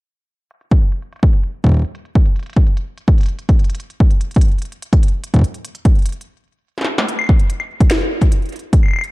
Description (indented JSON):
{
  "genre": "IDM",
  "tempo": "146 BPM",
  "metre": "4/4",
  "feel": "straight",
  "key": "none",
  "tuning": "none",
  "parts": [
    { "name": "industrial drum kit", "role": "drums", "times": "0.5-9.1 s", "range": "claves, hi-hat, snare drum", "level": "-21 LUFS", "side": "left 1 dB", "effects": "low-pass filter on hats, low-pass filter on snare, low-pass filter on perc, low-pass filter on room, ping-pong delay" },
    { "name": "electronic kick drum", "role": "drums", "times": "0.7-8.8 s", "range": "none", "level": "-12 LUFS", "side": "equal", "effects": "none" }
  ],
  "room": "little or no reverb",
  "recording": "dark, warm production",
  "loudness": "-14 LUFS",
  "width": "side -20 dB against mid",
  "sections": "0.5-7.1 A section; 7.1-9.1 B section",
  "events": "stop 6.3-7.1; drum fill 6.7-7.1",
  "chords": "none",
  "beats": "| 0.51 0.92 1.33 1.74 | 2.15 2.56 2.98 3.39 | 3.80 4.21 4.62 5.03 | 5.44 5.85 6.26 6.67 | 7.09 7.50 7.91 8.32 | 8.73"
}